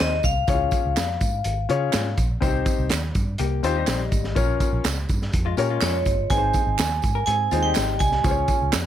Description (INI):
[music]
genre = uptempo 1960s-style soul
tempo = 124 BPM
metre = 4/4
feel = straight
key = unclear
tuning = A4 = 440 Hz
[part]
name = vibraphone with hard mallets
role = melody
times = 0.0-2.1, 5.8-8.7 s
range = Db5 to Ab5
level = -24 LUFS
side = right 1 dB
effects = none
[part]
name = warm grand piano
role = accompaniment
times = 0.0-8.8 s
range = C4 to Db5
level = -26 LUFS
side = left 7 dB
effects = none
[part]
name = vintage muted fingered electric bass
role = bass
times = 0.0-8.9 s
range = G1 to Db3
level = -26 LUFS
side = right 1 dB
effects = none
[part]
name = crunchy breakbeat drum kit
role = drums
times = 0.0-8.8 s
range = hi-hat, kick drum, snare drum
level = -25 LUFS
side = right 1 dB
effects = none
[part]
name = tambourine and handclaps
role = percussion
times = 0.2-8.8 s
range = none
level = -32 LUFS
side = right 12 dB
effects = none
[part]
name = vintage hollow-body jazz guitar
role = riff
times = 3.4-8.2 s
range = G3 to Bb4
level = -30 LUFS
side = left 10 dB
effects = none
[sound]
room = light reverb, small room reverb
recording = none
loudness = -20 LUFS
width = side -10 dB against mid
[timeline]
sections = 0.0-8.9 A section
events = none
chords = 0.5 Db; 2.4 Cm; 4.4 Bbm; 6.3 Ab; 8.3 Db